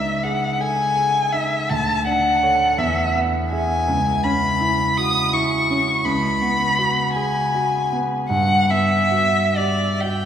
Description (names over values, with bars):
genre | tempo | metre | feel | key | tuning
classical, impressionist duo for violin and grand piano | 54 BPM (dotted quarters) | 6/8 | uneven beats, rubato | unclear | A4 = 439 Hz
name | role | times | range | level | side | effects
rich violin | melody | 0.0-10.3 s | D5 to D#6 | -19 LUFS | left 1 dB | none
clear concert grand piano | accompaniment | 0.0-10.3 s | C#2 to E5 | -22 LUFS | right 1 dB | none
room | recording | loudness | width
wet cathedral reverb, RT60 4.8 s | recorded in a church or concert hall | -17 LUFS | side -9 dB against mid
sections
0.0-10.3 A section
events
none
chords
0.0 C#madd9; 1.7 Dmaj7; 2.8 E; 3.9 C#m7; 6.0 C#7sus4; 8.3 Gmaj7